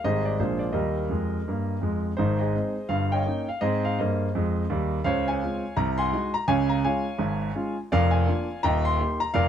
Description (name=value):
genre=jazz, stride piano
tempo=168 BPM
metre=4/4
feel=swing 62% on 8ths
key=Ab major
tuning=A4 = 438 Hz
part: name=warm concert grand piano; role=solo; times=0.0-9.5 s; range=Eb1 to C6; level=-23 LUFS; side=equal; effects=none
room=little or no reverb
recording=close, detailed microphones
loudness=-23 LUFS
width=side -9 dB against mid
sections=0.0-2.2 A section; 2.2-9.5 B section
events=none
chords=0.0 Abmaj7; 0.4 Bb9; 0.7 Eb; 2.2 Ab; 2.9 Eb7/G; 3.6 Ab; 5.0 Dbmaj7; 5.8 Ab7/C; 6.5 Db; 7.9 Bb7/F; 8.6 Eb